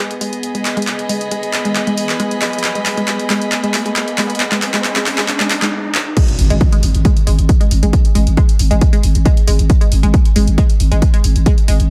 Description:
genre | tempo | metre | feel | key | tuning
driving peak-time techno | 136 BPM | 4/4 | straight | G# minor | A4 = 440 Hz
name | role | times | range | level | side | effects
analog pluck | riff | 0.0-11.7 s | G#3 | -24 LUFS | equal | chorus, phaser, sidechain pumping, dub echo
riser, noise sweep and impact | sound effects | 1.2-7.9 s | none | -27 LUFS | equal | none
rich chamber string section | texture | 0.0-5.7 s | B3 to B5 | -24 LUFS | equal | sidechain pumping
punchy analog drum machine | drums | 0.1-11.9 s | crash cymbal, handclaps, hi-hat | -22 LUFS | equal | overdrive
electronic kick drum | drums | 6.2-11.6 s | none | -14 LUFS | equal | overdrive
growling 808-style bass | bass | 6.4-11.9 s | G#1 | -15 LUFS | equal | overdrive, sidechain pumping, low-pass filter
room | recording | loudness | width
light reverb, digital ambience | none | -14 LUFS | mono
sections
0.0-6.2 A section; 6.2-11.9 B section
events
build-up 0.0-6.2; drum fill 0.0-5.7, 5.9; filter sweep on synth arpeggio sound 0.0-6.2; riser 1.2-5.7; noise sweep 4.4-6.2; stop 5.7-6.2; drop 6.2-11.9; impact 6.2-7.9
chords
0.0 G#m; 6.2 N.C.

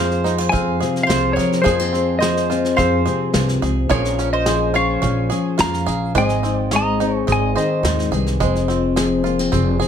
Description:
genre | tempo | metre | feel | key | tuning
acoustic folk duo or small band | 107 BPM | 4/4 | straight | F minor | A4 = 440 Hz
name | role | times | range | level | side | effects
semi-hollow electric guitar | melody | 0.0-8.1 s | C5 to Bb5 | -22 LUFS | left 2 dB | tremolo
mandolin | second line | 0.0-8.1 s | Ab4 to F5 | -26 LUFS | right 6 dB | tape echo
fingerpicked steel-string acoustic guitar | accompaniment | 0.0-9.9 s | F2 to Ab4 | -20 LUFS | left 4 dB | none
bluegrass banjo | arpeggios | 0.0-9.9 s | F3 to Ab4 | -26 LUFS | right 9 dB | none
upright bass | bass | 0.0-9.8 s | F1 to F3 | -22 LUFS | right 1 dB | none
soft brush drum kit | drums | 0.1-9.9 s | kick drum, snare drum | -25 LUFS | equal | none
room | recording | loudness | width
light reverb | none | -16 LUFS | side -8 dB against mid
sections
0.0-9.9 A section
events
none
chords
0.0 Fm; 3.9 Bbm7; 6.2 Ab; 8.4 Fm

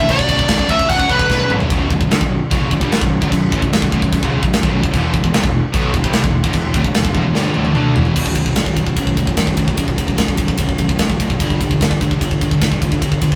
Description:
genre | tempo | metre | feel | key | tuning
heavy metal | 149 BPM | 4/4 | straight | B phrygian | A4 = 440 Hz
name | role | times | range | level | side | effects
high-gain lead guitar | melody | 0.0-1.5 s | B4 to F#5 | -18 LUFS | equal | distortion
heavy high-gain guitar | riff | 0.0-13.4 s | B1 to A4 | -28 LUFS | equal | none
high-gain distorted guitar | riff | 0.0-8.2 s | B1 to D4 | -28 LUFS | equal | none
scooped high-gain guitar | riff | 0.0-13.4 s | B1 to D4 | -25 LUFS | equal | none
fuzz picked electric bass | bass | 0.1-13.4 s | B0 to D2 | -23 LUFS | equal | overdrive
tight metal drum kit | drums | 0.1-13.4 s | china cymbal, crash cymbal, kick drum, ride cymbal, snare drum, toms | -19 LUFS | equal | none
room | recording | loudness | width
light reverb | rough rehearsal-room recording | -16 LUFS | mono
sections
0.0-1.7 A section; 1.7-8.2 B section; 8.2-13.4 C section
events
drum fill 1.3-1.7, 7.3-8.2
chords
0.1 Bm; 4.9 E5; 8.2 B5; 11.4 G5

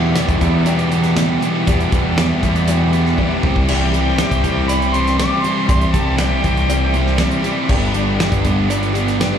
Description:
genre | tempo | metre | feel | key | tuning
classic rock | 120 BPM | 4/4 | straight | unclear | A4 = 444 Hz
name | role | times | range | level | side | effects
picked plugged-in twelve-string acoustic guitar | accompaniment | 0.0-9.4 s | E2 to G4 | -28 LUFS | right 1 dB | none
cranked stack guitar | riff | 0.0-9.4 s | E2 to G4 | -21 LUFS | right 11 dB | overdrive, spring reverb, slapback echo
overdriven electric guitar | riff | 0.0-9.4 s | E2 to G4 | -20 LUFS | left 10 dB | slapback echo
growling picked electric bass | bass | 0.0-9.2 s | G1 to E2 | -18 LUFS | equal | overdrive
damped 70s drum kit | drums | 0.2-9.3 s | crash cymbal, hi-hat, kick drum, snare drum, splash cymbal, toms | -21 LUFS | equal | none
cowbell | percussion | 0.2-9.3 s | none | -32 LUFS | equal | none
mellow harmonica | melody | 3.7-7.1 s | G5 to D6 | -23 LUFS | left 1 dB | slapback echo, analog delay
room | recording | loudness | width
studio ambience | live gig heard through the venue's PA, club reverb | -14 LUFS | side -8 dB against mid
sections
0.0-9.4 A section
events
drum fill 3.2-3.7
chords
0.0 Em; 3.4 C; 7.7 G

